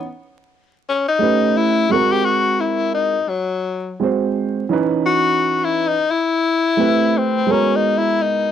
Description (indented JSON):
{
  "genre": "hip hop",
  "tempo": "86 BPM",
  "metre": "4/4",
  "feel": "swing 59% on 16ths",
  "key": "unclear",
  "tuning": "A4 = 440 Hz",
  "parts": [
    { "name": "breathy tenor saxophone", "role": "melody", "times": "0.0-8.5 s", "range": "F#3 to G4", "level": "-17 LUFS", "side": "left 5 dB", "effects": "cassette tape" },
    { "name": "dark baby grand piano", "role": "accompaniment", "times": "1.2-8.5 s", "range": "E3 to B#4", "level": "-19 LUFS", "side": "right 6 dB", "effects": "cassette tape" }
  ],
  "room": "moderate spring reverb, RT60 1.4 s",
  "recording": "home recording on cassette, vinyl crackle",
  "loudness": "-15 LUFS",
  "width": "side -9 dB against mid",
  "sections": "0.0-8.5 A section",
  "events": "tenor saxophone solo 0.0-8.5",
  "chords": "0.0 N.C.; 1.2 A9; 1.9 G#9; 4.7 C#m9; 6.8 Am9; 7.5 G#m9"
}